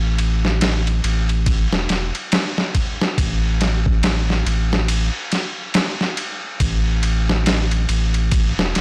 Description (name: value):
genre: trip hop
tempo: 70 BPM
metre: 4/4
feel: swing 59% on 16ths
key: unclear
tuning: A4 = 441 Hz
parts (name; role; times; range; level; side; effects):
- round analog bass; bass; 0.0-8.8 s; E1 to A1; -21 LUFS; equal; tube saturation
- boom bap sampler-style drum kit; drums; 0.2-8.8 s; kick drum, ride cymbal, snare drum; -22 LUFS; equal; soft clipping on snare
room: little or no reverb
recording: blown-out, overdriven recording, vinyl crackle, overdrive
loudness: -20 LUFS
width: mono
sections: 0.0-8.8 A section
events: none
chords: none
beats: 0.61 1.47 2.33 | 3.18 4.04 4.90 5.76 | 6.61 7.47 8.33